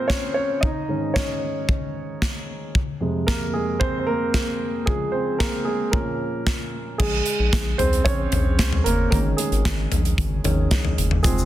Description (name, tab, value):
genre	piano-driven pop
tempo	113 BPM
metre	4/4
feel	straight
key	Bb minor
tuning	A4 = 440 Hz
part	warm concert grand piano	accompaniment	0.0-11.5 s	F2 to Eb5	-24 LUFS	right 1 dB	none
part	modern studio drum kit	drums	0.1-11.4 s	crash cymbal, hi-hat, kick drum, snare drum, toms	-23 LUFS	equal	none
part	round analog bass	bass	7.0-11.5 s	F1 to Db2	-23 LUFS	equal	none
part	tube shaker	percussion	11.2-11.5 s	none	-31 LUFS	left 7 dB	none
room	light reverb, small room ambience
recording	dense, heavily limited modern master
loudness	-20 LUFS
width	side -13 dB against mid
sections	0.0-7.0 A section; 7.0-11.5 B section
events	grand piano solo 0.0-7.0, 7.0-11.5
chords	0.0 Bbm7; 0.6 Absus4; 2.8 Fm; 4.9 Db; 5.9 Bbm; 7.0 Bbm7; 9.1 Absus4